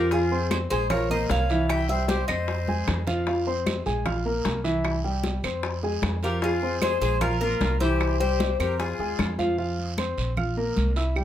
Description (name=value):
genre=latin, Cuban son and guajira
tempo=152 BPM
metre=4/4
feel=straight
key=F minor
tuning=A4 = 438 Hz
part: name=Cuban tres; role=melody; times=0.0-3.0, 6.2-9.3 s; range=Ab4 to G5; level=-29 LUFS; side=left 2 dB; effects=tape echo
part: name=breathy bright jazz flute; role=second line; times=0.0-3.0, 6.2-9.3 s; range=F4 to E5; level=-32 LUFS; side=left 4 dB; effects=none
part: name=warm grand piano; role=arpeggios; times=0.0-11.2 s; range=E3 to F6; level=-27 LUFS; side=equal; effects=none
part: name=upright bass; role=bass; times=0.0-11.2 s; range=Bb1 to F2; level=-28 LUFS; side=equal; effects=none
part: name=bongos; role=percussion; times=0.1-9.4 s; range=none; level=-34 LUFS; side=left 5 dB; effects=none
part: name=congas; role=percussion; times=0.1-11.2 s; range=none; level=-32 LUFS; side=equal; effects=none
part: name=guiro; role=percussion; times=0.1-11.2 s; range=none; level=-39 LUFS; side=right 6 dB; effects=none
part: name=claves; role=percussion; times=0.5-11.2 s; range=none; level=-36 LUFS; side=right 6 dB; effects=none
room=moderate small room reverb, RT60 0.6 s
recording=none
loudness=-23 LUFS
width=side -11 dB against mid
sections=0.0-9.6 A section; 9.6-11.2 B section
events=drum fill 2.7-3.3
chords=0.0 Fm; 0.9 Bbm; 1.7 C; 2.5 Fm7; 4.1 Bb5; 4.8 C; 5.6 Fm; 7.2 Bb5; 8.0 C; 8.8 Fm7; 9.6 F5; 10.4 Bb5